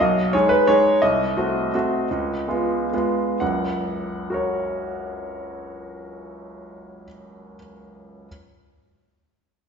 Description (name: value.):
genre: classical, piano waltz.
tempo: 116-183 BPM.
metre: 3/4.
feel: rubato.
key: F# major.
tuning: A4 = 439 Hz.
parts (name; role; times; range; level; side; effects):
clear baby grand piano; solo; 0.0-8.3 s; F#1 to F#5; -20 LUFS; equal; none.
room: wet recital hall reverb, RT60 1.6 s.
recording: recorded in a church or concert hall, nothing above 7.7 kHz.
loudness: -19 LUFS.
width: side -6 dB against mid.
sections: 0.0-3.4 A section; 3.4-6.1 B section.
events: slowing down 0.5-3.4.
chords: 0.0 G#m/B; 1.0 Cdim7; 2.1 C#7; 3.4 F#.